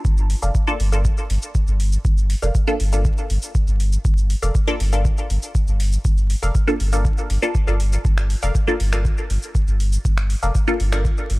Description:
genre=dub techno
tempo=120 BPM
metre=4/4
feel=straight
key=G minor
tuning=A4 = 440 Hz
part: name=soft dub sub bass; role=bass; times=0.0-11.4 s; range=F1 to G1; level=-19 LUFS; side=equal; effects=tube saturation, sidechain pumping
part: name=electronic kick drum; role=drums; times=0.0-11.2 s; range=none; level=-20 LUFS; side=equal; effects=none
part: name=booming analog drum machine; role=drums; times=0.1-11.4 s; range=finger snaps, hi-hat, shaker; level=-32 LUFS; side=equal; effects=none
part: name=filtered dub chord stab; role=riff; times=0.4-11.0 s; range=A4 to F5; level=-29 LUFS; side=left 1 dB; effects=phaser, sidechain pumping, dub echo
part: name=filtered dub chord stab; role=stabs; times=0.7-10.8 s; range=Bb3 to A4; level=-25 LUFS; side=equal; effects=phaser, sidechain pumping, dub echo
room=little or no reverb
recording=dry, gritty hardware recording, vinyl crackle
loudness=-17 LUFS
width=side -20 dB against mid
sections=0.0-11.4 A section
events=none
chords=0.0 Gm7

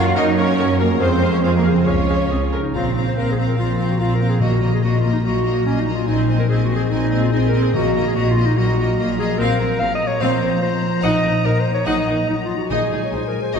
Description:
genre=cinematic, heroic adventure film score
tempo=144 BPM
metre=4/4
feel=straight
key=unclear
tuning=A4 = 440 Hz
part: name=clear symphonic violin section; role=melody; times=0.0-13.6 s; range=F4 to Bb5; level=-31 LUFS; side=left 4 dB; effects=none
part: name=rich symphonic violin section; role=second line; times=0.0-13.6 s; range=Ab4 to Gb5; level=-28 LUFS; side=left 3 dB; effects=none
part: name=clear symphonic viola section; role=accompaniment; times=0.0-13.6 s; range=Bb3 to F5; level=-26 LUFS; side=right 1 dB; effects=none
part: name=warm trombone section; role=sustained chords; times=0.0-2.5 s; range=F3 to Bb3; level=-27 LUFS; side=right 3 dB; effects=none
part: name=concert harp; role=arpeggios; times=0.0-13.6 s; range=F2 to F5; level=-25 LUFS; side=left 3 dB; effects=none
part: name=warm trumpet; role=stabs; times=0.0-2.5 s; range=Bb4 to F5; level=-27 LUFS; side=equal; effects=none
part: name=rich symphonic cello section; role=bass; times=0.0-13.6 s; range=Bb2 to F4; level=-26 LUFS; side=right 1 dB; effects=none
part: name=rich symphonic double bass section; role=bass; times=0.0-13.6 s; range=Bb1 to Gb2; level=-21 LUFS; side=right 1 dB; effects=none
part: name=bright clarinet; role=second line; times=2.3-13.6 s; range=C4 to F5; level=-22 LUFS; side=equal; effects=none
part: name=timpani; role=percussion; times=4.4-5.0, 7.7-8.3, 12.7-13.3 s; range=Bb2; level=-26 LUFS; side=left 1 dB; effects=none
room=wet church reverb, RT60 3.1 s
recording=recorded in a church or concert hall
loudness=-16 LUFS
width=side -6 dB against mid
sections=0.0-2.7 A section; 2.7-13.6 B section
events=none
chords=0.0 Gb; 1.0 Fm; 1.9 Db; 2.7 Bbsus2; 4.4 Ebm/Bb; 6.1 Ab/Bb; 7.7 Ebm/Bb; 9.4 Bbsus2; 11.0 Ebm/Bb; 12.7 Ab/Bb

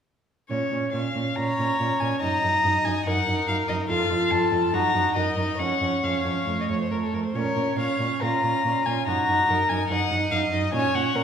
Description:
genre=quick classical-period movement for string quartet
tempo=142 BPM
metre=4/4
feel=rubato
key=Bb minor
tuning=A4 = 439 Hz
part: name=rich violin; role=melody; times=0.5-11.2 s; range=A4 to Bb5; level=-25 LUFS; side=left 4 dB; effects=none
part: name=warm viola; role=accompaniment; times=0.5-11.2 s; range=A3 to F4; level=-28 LUFS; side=right 3 dB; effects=none
part: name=rich cello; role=bass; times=0.5-11.2 s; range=F2 to Bb2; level=-29 LUFS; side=right 2 dB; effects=none
part: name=rich violin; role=second line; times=1.4-11.2 s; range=F4 to Eb5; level=-30 LUFS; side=equal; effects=none
room=wet recital hall reverb, RT60 1.3 s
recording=recorded in a church or concert hall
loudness=-22 LUFS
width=side -8 dB against mid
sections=0.5-11.2 A section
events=none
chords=0.5 Bbm; 2.2 Ebm/Gb; 3.9 F; 4.7 Ebm/Gb; 5.6 Dbadd11/F; 6.5 F; 7.3 Bbm; 9.1 Ebm/Gb

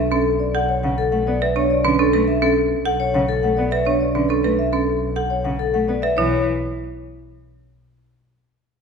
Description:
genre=classical, minimalist pattern music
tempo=104 BPM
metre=4/4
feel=straight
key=B minor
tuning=A4 = 440 Hz
part: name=vibraphone with medium hard mallets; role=melody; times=0.0-6.4 s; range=A4 to F#5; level=-21 LUFS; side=left 6 dB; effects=none
part: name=rich double bass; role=bass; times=0.0-6.4 s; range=B1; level=-26 LUFS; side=right 1 dB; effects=none
part: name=folk marimba with hard mallets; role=arpeggios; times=0.1-6.4 s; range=C#4 to B4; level=-21 LUFS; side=right 7 dB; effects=none
part: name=rich cello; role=accompaniment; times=0.8-6.4 s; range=C#3 to B3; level=-27 LUFS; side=left 1 dB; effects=none
room=wet recital hall reverb, RT60 1.5 s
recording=recorded in a church or concert hall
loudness=-17 LUFS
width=side -5 dB against mid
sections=0.0-6.2 A section; 6.2-8.5 B section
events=none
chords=0.0 Bm9; 6.2 N.C.

